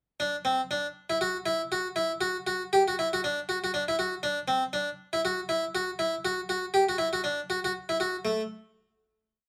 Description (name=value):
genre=afrobeat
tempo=119 BPM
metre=4/4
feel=swing 56% on 16ths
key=unclear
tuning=A4 = 438 Hz
part: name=harpsichord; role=solo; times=0.2-8.4 s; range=A3 to G4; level=-29 LUFS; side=equal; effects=none
room=moderate studio reverb, RT60 0.6 s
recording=band playing live in one room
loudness=-29 LUFS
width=mono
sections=0.2-8.3 groove; 8.3-9.5 final note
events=none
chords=none